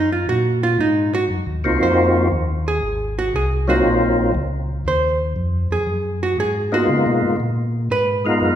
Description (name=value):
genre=jazz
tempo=118 BPM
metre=4/4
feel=swing 68% on 8ths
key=Ab mixolydian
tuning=A4 = 440 Hz
part: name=archtop guitar, miked and amplified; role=accompaniment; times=0.0-8.6 s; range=Eb4 to C5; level=-21 LUFS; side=right 2 dB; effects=none
part: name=mellow tonewheel organ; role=bass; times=0.0-8.6 s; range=Ab1 to Db3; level=-22 LUFS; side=equal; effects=chorus vibrato, slow rotary speaker
part: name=percussive tonewheel organ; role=melody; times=1.6-8.6 s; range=Gb3 to Bb4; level=-18 LUFS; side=left 1 dB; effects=slow rotary speaker, overdrive, chorus vibrato
room=wet recital hall reverb, RT60 1.7 s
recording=recorded in a church or concert hall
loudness=-17 LUFS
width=side -10 dB against mid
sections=0.0-8.6 A section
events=hollow-body jazz guitar solo 0.0-8.6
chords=0.0 Ab13; 6.9 Db13